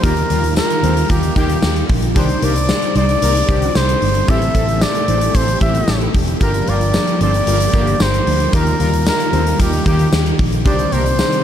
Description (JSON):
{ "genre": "1980s-style pop", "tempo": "113 BPM", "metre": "4/4", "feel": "straight", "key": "unclear", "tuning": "A4 = 440 Hz", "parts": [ { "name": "warm flugelhorn", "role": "melody", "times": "0.0-11.4 s", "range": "G4 to E5", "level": "-20 LUFS", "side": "equal", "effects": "ping-pong delay" }, { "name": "overdriven semi-hollow guitar", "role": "accompaniment", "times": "0.0-11.4 s", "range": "G2 to G4", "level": "-30 LUFS", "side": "equal", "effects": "none" }, { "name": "warm analog keys", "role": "accompaniment", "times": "0.0-11.4 s", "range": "G3 to C5", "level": "-26 LUFS", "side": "right 1 dB", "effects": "chorus" }, { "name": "ensemble organ-string", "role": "sustained chords", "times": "0.0-11.4 s", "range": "C3 to D5", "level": "-24 LUFS", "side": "equal", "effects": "ensemble chorus" }, { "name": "analog synth brass", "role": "stabs", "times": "0.0-11.0 s", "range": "D3 to C5", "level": "-24 LUFS", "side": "left 2 dB", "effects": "chorus, ping-pong delay" }, { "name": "vintage muted fingered electric bass", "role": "bass", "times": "0.0-11.2 s", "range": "E1 to Eb2", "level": "-18 LUFS", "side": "equal", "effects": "none" }, { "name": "huge arena drum kit", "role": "drums", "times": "0.0-11.4 s", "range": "hi-hat, kick drum, snare drum, tambourine", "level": "-18 LUFS", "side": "equal", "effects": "none" }, { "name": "tambourine", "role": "percussion", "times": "0.6-11.3 s", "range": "none", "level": "-32 LUFS", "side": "left 6 dB", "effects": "none" } ], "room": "light reverb, small room ambience", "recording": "dark, warm production", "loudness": "-13 LUFS", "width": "side -10 dB against mid", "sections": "0.0-11.4 A section", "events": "none", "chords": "0.0 Ebadd9; 2.2 Cmadd9; 4.3 Am7; 6.4 Gm7; 8.5 Ebadd9; 10.7 Cmadd9" }